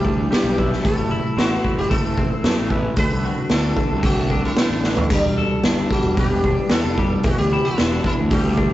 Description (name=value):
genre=psychedelic rock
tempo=113 BPM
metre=4/4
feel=straight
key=A dorian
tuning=A4 = 440 Hz
part: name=sitar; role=melody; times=0.0-8.7 s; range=D4 to B4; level=-25 LUFS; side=left 1 dB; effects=none
part: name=twelve-string electric guitar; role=riff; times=0.0-8.7 s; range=E2 to A4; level=-24 LUFS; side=left 1 dB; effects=phaser
part: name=fuzz picked electric bass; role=bass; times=0.0-8.7 s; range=E1 to F#2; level=-23 LUFS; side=equal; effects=overdrive
part: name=raw garage drum kit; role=drums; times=0.0-8.7 s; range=hi-hat, kick drum, snare drum, splash cymbal, toms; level=-20 LUFS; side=equal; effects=none
room=moderate stone room reverb, RT60 1.3 s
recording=rough rehearsal-room recording, tube saturation, nothing above 8.0 kHz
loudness=-17 LUFS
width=side -14 dB against mid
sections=0.0-8.7 A section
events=drum fill 4.8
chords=0.0 Em7; 0.8 Am; 3.0 D; 5.1 Gadd9; 7.2 Em7